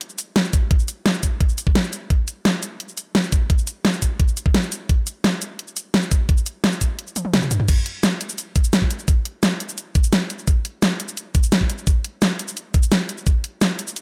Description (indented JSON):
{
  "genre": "drum and bass",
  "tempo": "172 BPM",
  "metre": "4/4",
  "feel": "straight",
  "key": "none",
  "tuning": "none",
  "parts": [
    { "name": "dubstep drum kit", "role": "drums", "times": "0.0-14.0 s", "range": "crash cymbal, hi-hat, shaker, snare drum, toms", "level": "-22 LUFS", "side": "equal", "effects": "none" },
    { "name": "electronic kick drum", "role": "drums", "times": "0.5-13.3 s", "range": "none", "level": "-20 LUFS", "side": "equal", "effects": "none" }
  ],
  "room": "little or no reverb",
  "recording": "none",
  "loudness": "-21 LUFS",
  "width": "mono",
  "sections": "0.0-7.7 A section; 7.7-14.0 A section",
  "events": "drop 0.0-7.7, 7.7-14.0; kick drops out 7.0-7.7; drum fill 7.2-7.7",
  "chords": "none",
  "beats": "0.01 0.36 | 0.71 1.06 1.41 1.75 | 2.10 2.45 2.80 3.15 | 3.50 3.85 4.20 4.54 | 4.89 5.24 5.59 5.94 | 6.29 6.64 6.99 7.33 | 7.68 8.03 8.38 8.73 | 9.08 9.43 9.78 10.13 | 10.47 10.82 11.17 11.52 | 11.87 12.22 12.57 12.92 | 13.27 13.61 13.96"
}